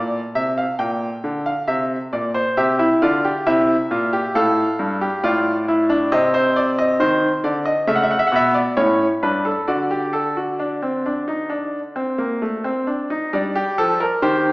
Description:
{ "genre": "classical, baroque-style 3-part fugue for grand piano", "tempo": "68 BPM", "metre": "4/4", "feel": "straight", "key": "G minor", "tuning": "A4 = 439 Hz", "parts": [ { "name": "bright baby grand piano", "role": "solo", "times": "0.0-14.5 s", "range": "G2 to G5", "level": "-17 LUFS", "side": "equal", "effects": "none" } ], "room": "wet recital hall reverb, RT60 1.3 s", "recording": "recorded in a church or concert hall, small speaker sound", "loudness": "-17 LUFS", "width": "side -23 dB against mid", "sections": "0.0-13.3 A section; 13.3-14.5 B section", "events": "none", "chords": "0.0 Dm; 0.8 Gm/Bb; 2.6 C7; 4.4 F; 6.1 Cmadd9; 7.9 A7; 9.7 N.C.; 13.3 Gm" }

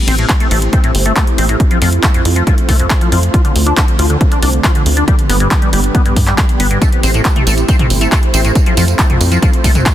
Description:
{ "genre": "uplifting trance", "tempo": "138 BPM", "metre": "4/4", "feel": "straight", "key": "A minor", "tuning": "A4 = 440 Hz", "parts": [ { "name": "supersaw pad", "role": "sustained chords", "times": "0.0-9.9 s", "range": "D3 to C5", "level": "-19 LUFS", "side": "right 2 dB", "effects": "phaser, sidechain pumping, low-pass filter" }, { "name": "liquid acid bass", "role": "arpeggios", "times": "0.1-9.8 s", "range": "F2 to F4", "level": "-18 LUFS", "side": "left 2 dB", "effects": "wide subtle chorus, sidechain pumping, ping-pong delay" }, { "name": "tight sequencer bass", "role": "bass", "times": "0.1-9.8 s", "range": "G1 to G2", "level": "-14 LUFS", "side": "equal", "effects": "sidechain pumping" }, { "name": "punchy analog drum machine", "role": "drums", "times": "0.1-9.9 s", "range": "handclaps, hi-hat, tambourine, toms", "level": "-18 LUFS", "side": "equal", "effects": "none" }, { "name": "electronic kick drum", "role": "drums", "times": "0.3-9.9 s", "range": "none", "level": "-13 LUFS", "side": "equal", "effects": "none" } ], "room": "digital ambience", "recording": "dense, heavily limited modern master", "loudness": "-10 LUFS", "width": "side -12 dB against mid", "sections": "0.0-9.9 A section", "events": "filter sweep on supersaw synth 0.0-9.9", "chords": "0.0 Am7; 1.6 Fmaj7; 3.3 Dm7; 5.1 G; 6.8 Am7; 8.6 Fmaj7" }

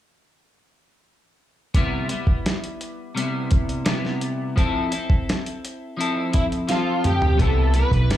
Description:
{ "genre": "indie pop, bedroom pop", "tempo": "85 BPM", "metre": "4/4", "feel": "straight", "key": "C major", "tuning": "A4 = 440 Hz", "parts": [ { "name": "electric guitar at the edge of break-up", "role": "accompaniment", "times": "1.7-8.2 s", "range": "C3 to A4", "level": "-25 LUFS", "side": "left 2 dB", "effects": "analog chorus, warbly pitch drift, slapback echo" }, { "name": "dusty soul sampler-style drum kit", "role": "drums", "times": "1.7-8.2 s", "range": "hi-hat, kick drum, snare drum, toms", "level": "-21 LUFS", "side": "equal", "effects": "none" }, { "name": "overdriven slide guitar", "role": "melody", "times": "6.3-8.2 s", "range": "E4 to B4", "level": "-24 LUFS", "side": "right 1 dB", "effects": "ensemble chorus, slapback echo, tape echo" }, { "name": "warm analog keys", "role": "accompaniment", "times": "7.4-8.2 s", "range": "G3 to B4", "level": "-33 LUFS", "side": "right 7 dB", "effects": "chorus, slapback echo" }, { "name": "vintage muted fingered electric bass", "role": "bass", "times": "7.4-8.2 s", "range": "G1 to C2", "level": "-18 LUFS", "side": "equal", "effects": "none" } ], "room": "light reverb", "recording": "live gig heard through the venue's PA, club reverb", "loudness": "-20 LUFS", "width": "side -12 dB against mid", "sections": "1.7-7.4 A section", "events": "drum fill 6.7-7.4", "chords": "1.7 Cmaj7; 4.6 Fmaj7; 7.4 Cmaj7" }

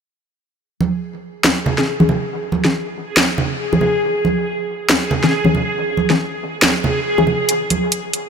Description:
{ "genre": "deep dubstep", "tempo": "139 BPM", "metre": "4/4", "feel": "swing 57% on 16ths, half-time", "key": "C# minor", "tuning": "A4 = 440 Hz", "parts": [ { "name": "backwards swelling texture", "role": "texture", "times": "1.6-8.3 s", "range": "G#4", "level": "-22 LUFS", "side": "equal", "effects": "built-in reverb" }, { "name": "congas", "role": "percussion", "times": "0.8-7.8 s", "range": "none", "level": "-21 LUFS", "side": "right 4 dB", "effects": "none" }, { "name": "garage drum kit", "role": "drums", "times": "1.4-8.2 s", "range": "hi-hat, snare drum", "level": "-18 LUFS", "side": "equal", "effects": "overdrive, studio reverb" }, { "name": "filtered dub chord stab", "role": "stabs", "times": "1.8-7.3 s", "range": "E3 to G#4", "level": "-20 LUFS", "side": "left 4 dB", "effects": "chorus, cassette tape, dub echo" } ], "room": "moderate huge ambient reverb, RT60 4.4 s", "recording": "none", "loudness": "-15 LUFS", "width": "side -6 dB against mid", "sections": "0.6-8.3 A section", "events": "none", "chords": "0.6 C#m" }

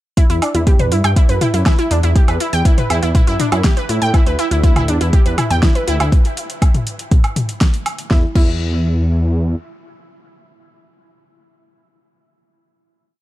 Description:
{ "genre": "melodic techno", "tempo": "121 BPM", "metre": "4/4", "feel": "straight", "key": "E minor", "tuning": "A4 = 442 Hz", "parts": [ { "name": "wide unison pluck", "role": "arpeggios", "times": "0.2-8.5 s", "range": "D4 to G5", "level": "-20 LUFS", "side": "equal", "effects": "sidechain pumping, dub echo" }, { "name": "deep house drum kit", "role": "drums", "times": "0.2-8.5 s", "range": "crash cymbal, hi-hat, snare drum, toms, woodblock", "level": "-21 LUFS", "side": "equal", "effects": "sidechain pumping on hats, sidechain pumping on perc, sidechain pumping on toms, sidechain pumping on cymbals" }, { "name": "electronic kick drum", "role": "drums", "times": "0.2-8.5 s", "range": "none", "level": "-12 LUFS", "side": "equal", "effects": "none" }, { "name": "dark detuned saw bass", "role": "bass", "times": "0.3-9.6 s", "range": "D2 to A2", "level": "-17 LUFS", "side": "equal", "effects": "sidechain pumping" } ], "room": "digital ambience", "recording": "dark, warm production", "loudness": "-13 LUFS", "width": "side -15 dB against mid", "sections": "0.2-8.1 drop; 8.1-12.1 final note", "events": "drop 0.2-8.1", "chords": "0.2 Em; 4.1 Dsus2; 8.1 N.C." }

